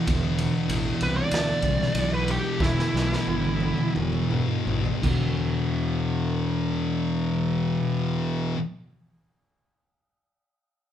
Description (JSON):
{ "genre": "stoner and doom metal", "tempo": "80-97 BPM", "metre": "4/4", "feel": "straight", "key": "unclear", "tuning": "A4 = 440 Hz", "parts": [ { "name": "thick fuzz guitar", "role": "riff", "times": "0.0-8.6 s", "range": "E2 to E3", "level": "-27 LUFS", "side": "left 5 dB", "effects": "distortion" }, { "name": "thick fuzz guitar", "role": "riff", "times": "0.0-8.6 s", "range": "E2 to E3", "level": "-30 LUFS", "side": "right 8 dB", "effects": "distortion" }, { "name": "fuzz fingered electric bass", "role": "bass", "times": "0.1-8.5 s", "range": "E1 to D2", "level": "-30 LUFS", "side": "equal", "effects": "overdrive" }, { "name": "raw garage drum kit", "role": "drums", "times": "0.1-5.2 s", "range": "crash cymbal, kick drum, ride cymbal, snare drum, toms", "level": "-29 LUFS", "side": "equal", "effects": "none" }, { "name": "fuzz lead guitar", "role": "melody", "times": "1.0-3.9 s", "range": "E4 to D5", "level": "-28 LUFS", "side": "right 2 dB", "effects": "wah, distortion" } ], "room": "light reverb", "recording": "band playing live in one room", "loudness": "-23 LUFS", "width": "side -10 dB against mid", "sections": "0.0-5.4 A section; 5.4-8.4 B section", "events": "lead electric guitar solo 0.0-5.4; slowing down 0.1-5.4; drum fill 2.6-5.4", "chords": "0.0 E5" }